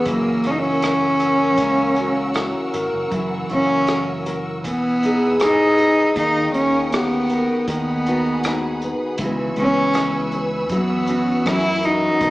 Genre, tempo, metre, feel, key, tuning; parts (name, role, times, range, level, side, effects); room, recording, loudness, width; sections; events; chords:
acoustic folk-pop ballad; 79 BPM; 4/4; straight; A4 = 440 Hz
warm cello; melody; 0.0-12.3 s; A#3 to E4; -18 LUFS; equal
fingerpicked steel-string acoustic guitar; accompaniment; 0.0-12.3 s; B2 to B4; -26 LUFS; left 1 dB
bright studio string section; sustained chords; 0.0-12.3 s; G#4 to E6; -29 LUFS; equal
concert harp; arpeggios; 0.0-12.3 s; D#3 to G#4; -25 LUFS; equal
fingered electric bass; bass; 0.1-12.3 s; E1 to F#2; -30 LUFS; equal
unplugged drum kit; drums; 0.1-12.3 s; hi-hat, kick drum, rim click; -28 LUFS; equal
wet large studio reverb, RT60 0.8 s; heard from further back in the room, small speaker sound; -17 LUFS; side -18 dB against mid
0.0-12.3 A section
0.1 F#7; 4.7 Emaj7; 6.2 D#7; 7.7 G#m7/D#; 9.2 C#m7; 10.7 F#7sus4; 11.5 F#7